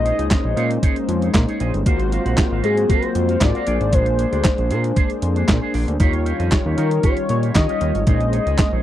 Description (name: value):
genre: early-eighties boogie funk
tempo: 116 BPM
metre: 4/4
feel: straight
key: Bb dorian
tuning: A4 = 440 Hz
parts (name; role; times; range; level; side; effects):
- warm velvety synth lead; melody; 0.0-8.8 s; Ab4 to Eb5; -23 LUFS; left 2 dB; chorus, slapback echo
- mellow synth brass; accompaniment; 0.0-8.8 s; G3 to Db5; -24 LUFS; left 4 dB; chorus
- warm analog pad; sustained chords; 0.0-8.8 s; Eb3 to G4; -30 LUFS; right 2 dB; chorus
- electric guitar with an envelope filter; riff; 0.0-8.8 s; D4 to Gb5; -30 LUFS; right 6 dB; lush chorus
- fat analog bass; bass; 0.0-8.8 s; G1 to Eb3; -20 LUFS; equal; none
- clean 12-bit digital drum machine; drums; 0.1-8.7 s; handclaps, hi-hat, kick drum, snare drum; -18 LUFS; equal; none
room: little or no reverb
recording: dry, close 1970s-style studio recording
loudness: -16 LUFS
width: side -12 dB against mid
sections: 0.0-8.8 A section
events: none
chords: 0.0 Bbm11; 1.9 Ab13; 3.7 Bb9; 6.0 Eb9; 8.1 Bbm11